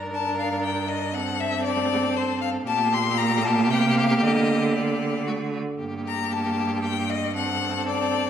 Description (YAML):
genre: quick classical-period movement for string quartet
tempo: 117 BPM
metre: 3/4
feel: straight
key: G minor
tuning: A4 = 439 Hz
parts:
  - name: warm violin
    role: second line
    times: 0.0-8.3 s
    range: F#4 to Bb4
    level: -30 LUFS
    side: left 3 dB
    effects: none
  - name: rich viola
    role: accompaniment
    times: 0.0-8.3 s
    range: A3 to D4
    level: -26 LUFS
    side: right 2 dB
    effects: none
  - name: bright cello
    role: bass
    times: 0.0-8.3 s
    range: G2 to D3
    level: -28 LUFS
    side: right 4 dB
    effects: none
  - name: rich violin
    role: melody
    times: 0.1-8.3 s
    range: C5 to C6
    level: -26 LUFS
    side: left 8 dB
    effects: none
room: wet recital hall reverb, RT60 1.5 s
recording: none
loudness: -21 LUFS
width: side -9 dB against mid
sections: 0.0-8.3 A section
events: none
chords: 0.0 Gm; 1.1 Gsus4; 2.7 Gm/Bb; 3.7 C5; 4.2 Gm/D; 5.3 D; 5.8 Gm; 7.4 F#dim/G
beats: 0.13 0.64 | 1.14 1.65 2.15 | 2.67 3.18 3.69 | 4.22 4.75 5.28 | 5.80 6.33 6.84 | 7.35 7.87